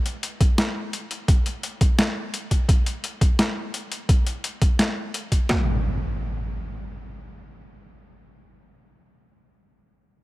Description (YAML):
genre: half-time drum and bass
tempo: 171 BPM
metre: 4/4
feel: swing 58% on 16ths, half-time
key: none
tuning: none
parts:
  - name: boom bap sampler-style drum kit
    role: drums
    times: 0.1-5.4 s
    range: hi-hat, snare drum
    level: -25 LUFS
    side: equal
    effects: overdrive
  - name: boom bap sampler-style drum kit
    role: drums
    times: 0.4-5.6 s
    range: kick drum, snare drum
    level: -19 LUFS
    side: equal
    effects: overdrive
  - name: impact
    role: sound effects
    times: 5.5-9.0 s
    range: none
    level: -27 LUFS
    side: equal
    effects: none
room: little or no reverb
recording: none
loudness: -21 LUFS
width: side -18 dB against mid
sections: 0.0-5.5 A section; 5.5-8.3 B section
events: none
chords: none